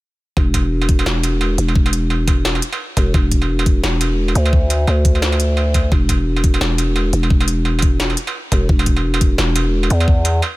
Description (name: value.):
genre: half-time drum and bass.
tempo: 173 BPM.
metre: 4/4.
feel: swing 59% on 16ths, half-time.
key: unclear.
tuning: A4 = 441 Hz.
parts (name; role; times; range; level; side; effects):
growling 808-style bass; bass; 0.4-10.4 s; E1 to E2; -16 LUFS; equal; none.
electronic kick drum; drums; 0.4-10.2 s; none; -15 LUFS; equal; studio reverb.
industrial drum kit; drums; 0.4-10.5 s; hi-hat, snare drum, struck metal; -22 LUFS; right 2 dB; studio reverb.
room: little or no reverb.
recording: none.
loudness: -14 LUFS.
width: side -19 dB against mid.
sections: 0.4-10.6 A section.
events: none.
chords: none.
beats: | 0.37 0.71 1.06 1.41 | 1.75 2.10 2.45 2.80 | 3.14 3.49 3.84 4.18 | 4.53 4.88 5.22 5.57 | 5.92 6.26 6.61 6.96 | 7.30 7.65 8.00 8.35 | 8.69 9.04 9.38 9.73 | 10.08 10.43.